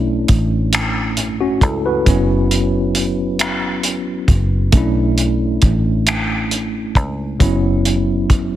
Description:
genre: slow six-eight R&B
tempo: 45 BPM (dotted quarters)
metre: 6/8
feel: straight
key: B minor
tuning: A4 = 440 Hz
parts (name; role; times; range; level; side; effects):
- tine electric piano; accompaniment; 0.0-8.6 s; F#3 to B4; -19 LUFS; equal; overdrive, fast stereo tremolo
- fingered electric bass; bass; 0.0-8.6 s; F#1 to C#2; -19 LUFS; equal; none
- cloth-damped thuddy drum kit; drums; 0.3-8.5 s; finger snaps, hi-hat, kick drum; -16 LUFS; equal; soft clipping on snare
room: studio ambience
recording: dense, heavily limited modern master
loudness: -14 LUFS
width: side -12 dB against mid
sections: 0.0-8.6 A section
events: none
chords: 0.0 Bm11; 2.1 F#7sus4; 4.7 Bm11; 7.4 F#7sus4

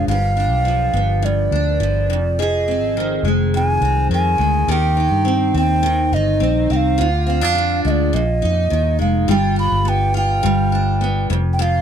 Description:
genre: acoustic pop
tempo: 104 BPM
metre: 4/4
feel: straight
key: unclear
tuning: A4 = 440 Hz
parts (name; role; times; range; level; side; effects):
- mellow alto ocarina; melody; 0.0-11.8 s; D5 to B5; -20 LUFS; right 2 dB; none
- picked steel-string acoustic guitar; accompaniment; 0.0-11.8 s; F2 to Ab4; -20 LUFS; equal; double-tracked left and right
- vintage muted fingered electric bass; bass; 0.0-11.8 s; F1 to G2; -19 LUFS; equal; none
room: little or no reverb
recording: dry, close 1970s-style studio recording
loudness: -15 LUFS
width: side -8 dB against mid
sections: 0.0-9.3 A section; 9.3-11.8 B section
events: none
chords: 0.1 G7; 2.1 Fm7; 4.7 Cm/Eb; 7.0 Ddim; 8.1 Bb7sus4; 9.3 G7; 11.3 N.C.

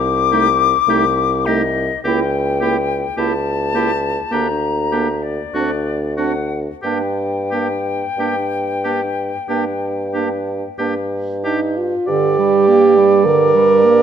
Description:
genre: classical, slow romantic movement for wind quintet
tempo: 44-54 BPM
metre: 4/4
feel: rubato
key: G minor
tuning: A4 = 444 Hz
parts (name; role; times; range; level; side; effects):
- concert flute; melody; 0.0-10.8 s; D5 to D6; -20 LUFS; left 9 dB; none
- mellow bassoon; bass; 0.0-14.0 s; C2 to G2; -21 LUFS; right 1 dB; none
- clear oboe; second line; 0.3-14.0 s; F#4 to D5; -25 LUFS; left 2 dB; none
- clear clarinet; accompaniment; 0.3-14.0 s; D3 to E4; -24 LUFS; right 12 dB; none
- warm French horn; accompaniment; 0.3-14.0 s; A3 to Bb4; -16 LUFS; right 2 dB; none
room: light reverb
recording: close, detailed microphones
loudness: -15 LUFS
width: side -8 dB against mid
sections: 0.0-12.1 A section; 12.1-14.0 A section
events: none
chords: 0.0 Am7b5/C; 2.1 C#dim7; 4.3 Gm/D; 5.6 D7; 6.8 Gm

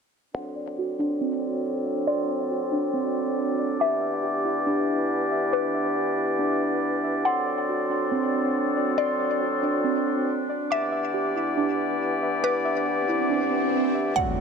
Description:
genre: hip hop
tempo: 139 BPM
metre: 4/4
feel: half-time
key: E minor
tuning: A4 = 439 Hz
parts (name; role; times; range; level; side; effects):
- mallet-like synth pluck; melody; 0.3-14.4 s; B4 to F#5; -30 LUFS; left 2 dB; chorus, phaser, low-pass filter, ping-pong delay
- mellow woodwind section; sustained chords; 0.3-14.4 s; D3 to D5; -26 LUFS; left 1 dB; low-pass filter
- muted felt-like synth keys; arpeggios; 0.4-14.2 s; C4 to D6; -28 LUFS; right 2 dB; chorus, low-pass filter, ping-pong delay
- swell and impact; sound effects; 12.9-14.4 s; none; -28 LUFS; right 1 dB; none
room: moderate huge ambient reverb, RT60 5.0 s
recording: dark, warm production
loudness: -23 LUFS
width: side -5 dB against mid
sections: 0.3-14.2 A section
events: filter sweep 0.3-14.2; swell 12.9-14.2; impact 14.2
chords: 0.3 D7; 3.8 Em7; 7.3 D7; 10.7 Em7

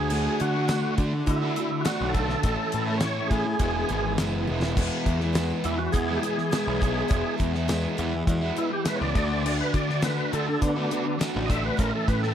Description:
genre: classic rock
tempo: 103 BPM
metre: 4/4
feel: straight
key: E mixolydian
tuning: A4 = 441 Hz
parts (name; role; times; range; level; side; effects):
- overdriven tonewheel organ; melody; 0.0-12.3 s; B3 to E5; -30 LUFS; equal; slow rotary speaker, chorus vibrato
- fuzz lead guitar; second line; 0.0-4.1 s; E5 to C#6; -35 LUFS; right 3 dB; distortion
- picked steel-string acoustic guitar; accompaniment; 0.0-12.3 s; E2 to F#4; -36 LUFS; right 4 dB; none
- string machine, violas; sustained chords; 0.0-12.3 s; G#3 to A4; -38 LUFS; equal; none
- crunchy overdriven guitar; riff; 0.0-12.3 s; A2 to F#4; -29 LUFS; left 1 dB; none
- fuzz picked electric bass; bass; 0.0-12.3 s; E1 to D3; -29 LUFS; equal; overdrive
- damped 70s drum kit; drums; 0.1-12.3 s; crash cymbal, hi-hat, kick drum, snare drum, tambourine, toms; -28 LUFS; equal; none
- group handclap; percussion; 0.7-11.3 s; none; -43 LUFS; left 3 dB; none
room: small room ambience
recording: none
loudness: -23 LUFS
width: side -9 dB against mid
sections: 0.0-4.8 A section; 4.8-12.3 B section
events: drum fill 4.5; tonewheel organ solo 4.8-12.3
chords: 0.0 D; 2.4 A; 3.6 E; 9.2 D; 11.8 A

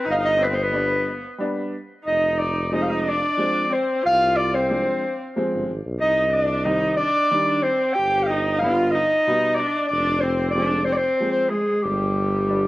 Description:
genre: klezmer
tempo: 92 BPM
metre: 3/4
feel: straight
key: unclear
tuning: A4 = 441 Hz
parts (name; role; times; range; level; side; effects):
- warm clarinet; melody; 0.0-12.7 s; G4 to G5; -21 LUFS; equal; cassette tape, tape echo
- rich viola; second line; 0.0-12.7 s; G3 to G4; -26 LUFS; right 1 dB; cassette tape
- warm tuba; bass; 0.1-12.7 s; F1 to C2; -27 LUFS; equal; none
- clear upright piano; accompaniment; 0.7-12.7 s; B2 to D4; -26 LUFS; equal; cassette tape
room: moderate spring reverb, RT60 1.4 s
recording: home recording on cassette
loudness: -19 LUFS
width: side -18 dB against mid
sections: 0.0-12.7 A section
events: speeding up 0.0-12.7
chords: 0.1 G; 2.1 Fm; 6.0 Cm; 8.0 G; 9.9 Fm; 11.8 G

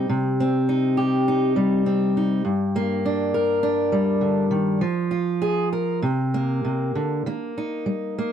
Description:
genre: folk, solo fingerstyle acoustic guitar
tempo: 102 BPM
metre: 4/4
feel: rubato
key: C minor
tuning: A4 = 440 Hz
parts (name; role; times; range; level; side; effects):
- fingerpicked steel-string acoustic guitar; solo; 0.0-8.3 s; G2 to Bb4; -20 LUFS; equal; none
room: little or no reverb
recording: dry, close 1970s-style studio recording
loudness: -20 LUFS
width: side -8 dB against mid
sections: 0.0-7.3 A section; 7.3-8.3 B section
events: none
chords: 0.0 Cm; 2.5 Gm; 4.8 Fm; 6.0 Bbadd9/C; 7.3 Eb

